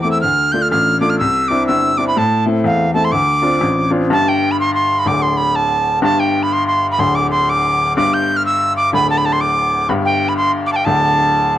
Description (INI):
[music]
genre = celtic folk, Celtic polka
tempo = 124 BPM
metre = 2/4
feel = swing 62% on 8ths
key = D dorian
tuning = A4 = 440 Hz
[part]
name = bright reedy mid whistle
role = melody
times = 0.0-11.6 s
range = F5 to G6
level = -15 LUFS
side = right 1 dB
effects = none
[part]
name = bright upright piano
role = accompaniment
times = 0.0-11.6 s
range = D1 to F4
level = -17 LUFS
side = left 2 dB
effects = none
[sound]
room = moderate studio reverb, RT60 0.7 s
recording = worn, warbling old tape, cassette tape, warbly pitch drift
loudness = -13 LUFS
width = side -12 dB against mid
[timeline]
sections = 0.0-4.1 A section; 4.1-11.6 B section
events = none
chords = 0.2 Dm; 1.2 Cadd9; 2.2 Am; 3.1 Dm7; 4.1 N.C.